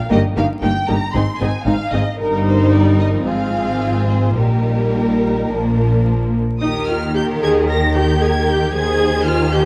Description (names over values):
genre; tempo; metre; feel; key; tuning
quick classical-period movement for string orchestra; 102-116 BPM; 4/4; rubato; Eb major; A4 = 436 Hz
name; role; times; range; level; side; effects
warm symphonic violin section; melody; 0.0-9.7 s; Bb4 to Bb6; -26 LUFS; equal; none
rich symphonic violin section; second line; 0.1-9.7 s; D4 to C5; -26 LUFS; equal; none
rich studio viola section; accompaniment; 0.1-9.7 s; F3 to Bb4; -22 LUFS; equal; none
rich symphonic cello section; bass; 0.1-9.7 s; G2 to Eb3; -23 LUFS; equal; none
warm symphonic double bass section; bass; 0.1-9.7 s; G1 to Eb2; -22 LUFS; equal; none
room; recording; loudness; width
moderate scoring stage reverb, RT60 1.7 s; dark, warm production, vinyl crackle; -17 LUFS; mono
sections
0.0-6.6 A section; 6.6-9.7 B section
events
none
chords
0.1 Eb/G; 1.2 Ab; 2.2 Eb/G; 3.2 Fm/Ab; 4.4 Eb/Bb; 5.5 Bb; 6.6 Eb; 8.7 Ab/Eb